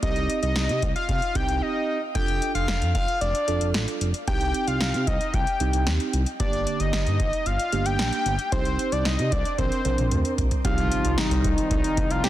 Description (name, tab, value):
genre	synth-pop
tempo	113 BPM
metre	4/4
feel	straight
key	C dorian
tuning	A4 = 440 Hz
part	fat analog lead	melody	0.0-12.3 s	Eb4 to G5	-26 LUFS	left 2 dB	chorus, digital delay, shimmer reverb
part	mellow tine electric piano	accompaniment	0.0-12.3 s	D3 to Bb4	-30 LUFS	right 7 dB	shimmer reverb
part	smooth gliding synth bass	bass	0.0-12.3 s	F1 to C3	-26 LUFS	equal	none
part	electro analog drum machine	drums	0.0-12.3 s	hi-hat, kick drum, snare drum, toms	-27 LUFS	equal	none
part	sweeping resonant pad	sustained chords	10.6-12.3 s	C3 to Eb4	-32 LUFS	left 3 dB	chorus, phaser, shimmer reverb
part	impact	sound effects	10.6-12.3 s	none	-32 LUFS	equal	none
room	light reverb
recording	dense, heavily limited modern master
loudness	-22 LUFS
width	side -13 dB against mid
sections	0.0-10.6 A section; 10.6-12.3 B section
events	break 1.6-2.2; drum fill 9.6-10.6; impact 10.6-12.3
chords	0.0 Cm; 2.2 F6; 4.3 Cm; 6.4 Gm; 8.5 Cm; 9.6 Bbadd9; 10.6 Cm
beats	| 0.03 0.56 1.09 1.62 | 2.15 2.68 3.21 3.74 | 4.28 4.81 5.34 5.87 | 6.40 6.93 7.46 7.99 | 8.52 9.05 9.59 10.12 | 10.65 11.18 11.71 12.24